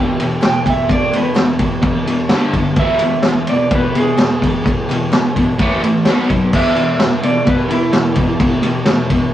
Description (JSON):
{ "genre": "garage rock duo or trio", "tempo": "128 BPM", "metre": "4/4", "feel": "straight", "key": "E mixolydian", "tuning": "A4 = 441 Hz", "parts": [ { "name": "clean lap steel guitar", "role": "melody", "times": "0.0-9.1 s", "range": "E4 to G5", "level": "-19 LUFS", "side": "right 3 dB", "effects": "none" }, { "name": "fuzz guitar", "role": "riff", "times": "0.0-9.3 s", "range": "E2 to B3", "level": "-16 LUFS", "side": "left 1 dB", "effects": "distortion" }, { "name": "vintage drum kit", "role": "drums", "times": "0.2-9.2 s", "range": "crash cymbal, kick drum, ride cymbal, snare drum", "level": "-16 LUFS", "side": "equal", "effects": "none" }, { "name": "group handclap", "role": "percussion", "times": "0.4-9.0 s", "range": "none", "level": "-33 LUFS", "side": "left 3 dB", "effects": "none" } ], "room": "wet studio reverb, RT60 0.5 s", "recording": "rough rehearsal-room recording, cassette tape", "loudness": "-12 LUFS", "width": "side -12 dB against mid", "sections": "0.0-9.3 A section", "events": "electric slide guitar solo 0.0-9.3", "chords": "0.0 E5; 2.3 G5; 2.8 E; 5.6 A5; 6.1 B5; 6.5 E5" }